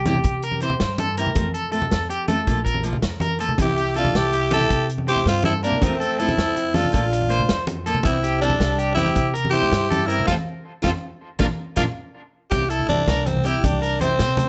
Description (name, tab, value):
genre	highlife guitar band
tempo	108 BPM (dotted quarters)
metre	12/8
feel	straight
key	C mixolydian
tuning	A4 = 439 Hz
part	electric guitar at the edge of break-up	arpeggios	0.0-14.5 s	D4 to C5	-28 LUFS	equal	harmonic tremolo, analog delay
part	upright bass	bass	0.0-14.5 s	Bb1 to C3	-28 LUFS	equal	none
part	picked steel-string acoustic guitar	accompaniment	0.1-14.1 s	E3 to G4	-31 LUFS	equal	none
part	vintage drum kit	drums	0.1-14.5 s	hi-hat, kick drum, snare drum	-28 LUFS	equal	none
part	congas	percussion	0.1-14.5 s	none	-29 LUFS	equal	none
part	growling tenor saxophone	melody	3.6-14.5 s	C4 to A4	-25 LUFS	equal	none
part	breathy alto saxophone	second line	3.6-11.8 s	G3 to E4	-32 LUFS	equal	none
room	light reverb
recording	nothing above 8.0 kHz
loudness	-21 LUFS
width	mono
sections	0.0-12.5 A section; 12.5-14.5 B section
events	band accent 10.3-12.5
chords	0.0 C; 1.4 F; 2.5 Bb; 3.6 C; 5.8 F; 6.9 Bb; 8.1 C; 10.3 F; 11.4 Bb; 12.5 C